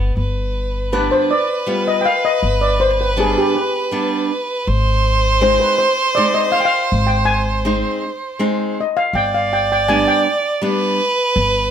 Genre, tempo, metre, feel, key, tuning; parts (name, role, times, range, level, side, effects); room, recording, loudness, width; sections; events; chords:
klezmer; 80 BPM; 3/4; straight; G phrygian dominant; A4 = 442 Hz
rich violin; second line; 0.0-11.7 s; B3 to D5; -19 LUFS; right 3 dB
upright bass; bass; 0.0-11.7 s; G1 to Ab1; -20 LUFS; left 1 dB
steel pan; melody; 0.9-11.1 s; G4 to Ab5; -17 LUFS; left 2 dB
nylon-string guitar; accompaniment; 0.9-11.0 s; G3 to F4; -20 LUFS; right 1 dB
light reverb; -14 LUFS; side -8 dB against mid
0.2-11.7 A section
steel pan solo 0.2-11.7
0.2 G; 4.7 Ab; 9.1 G